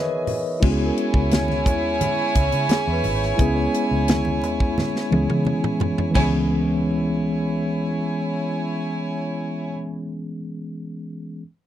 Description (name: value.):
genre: lush 1970s-style soul.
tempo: 87 BPM.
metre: 4/4.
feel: straight.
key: C# minor.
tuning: A4 = 442 Hz.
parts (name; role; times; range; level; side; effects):
warm studio violin section; second line; 0.0-9.7 s; E4 to G#5; -26 LUFS; right 2 dB; none.
mellow tine electric piano; accompaniment; 0.0-11.4 s; E3 to E5; -24 LUFS; left 1 dB; fast stereo tremolo.
tight funk drum kit; drums; 0.3-6.3 s; crash cymbal, hi-hat, kick drum, snare drum, toms; -23 LUFS; equal; none.
congas; percussion; 0.3-6.5 s; none; -30 LUFS; right 3 dB; none.
vintage muted fingered electric bass; bass; 0.6-9.7 s; G#1 to C#3; -25 LUFS; equal; none.
celesta; texture; 0.6-9.7 s; F#4 to C#5; -34 LUFS; right 6 dB; stereo widening.
room: little or no reverb.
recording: dry, close 1970s-style studio recording.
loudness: -19 LUFS.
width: side -11 dB against mid.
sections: 0.6-6.2 A section; 6.2-8.9 B section.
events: drum fill 4.8-6.2.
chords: 0.0 C#m9; 0.6 C#m7.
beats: | 0.62 1.31 2.01 2.70 | 3.39 4.08 4.77 5.46 | 6.15 6.84 7.53 8.22.